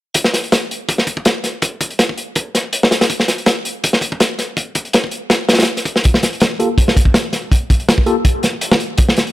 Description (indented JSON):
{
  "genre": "drum and bass, jungle",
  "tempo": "163 BPM",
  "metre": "4/4",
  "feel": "swing 54% on 16ths",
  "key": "G minor",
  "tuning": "A4 = 441 Hz",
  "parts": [
    { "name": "crunchy breakbeat drum kit", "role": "drums", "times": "0.1-9.3 s", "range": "hi-hat, kick drum, snare drum", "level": "-13 LUFS", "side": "equal", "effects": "high-pass filter on kick, high-pass filter on hats, high-pass filter on snare, high-pass filter on room" },
    { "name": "tine electric piano", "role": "stabs", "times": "6.6-8.1 s", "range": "Bb3 to A4", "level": "-20 LUFS", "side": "left 1 dB", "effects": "medium stereo tremolo, low-pass filter, dub echo" }
  ],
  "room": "small room ambience",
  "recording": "none",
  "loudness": "-13 LUFS",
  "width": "side -15 dB against mid",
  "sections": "0.2-6.0 A section; 6.0-9.3 B section",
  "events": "build-up 6.0-9.3; filter sweep on tine electric piano 6.0-9.3",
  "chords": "0.2 N.C.; 6.0 Gm9"
}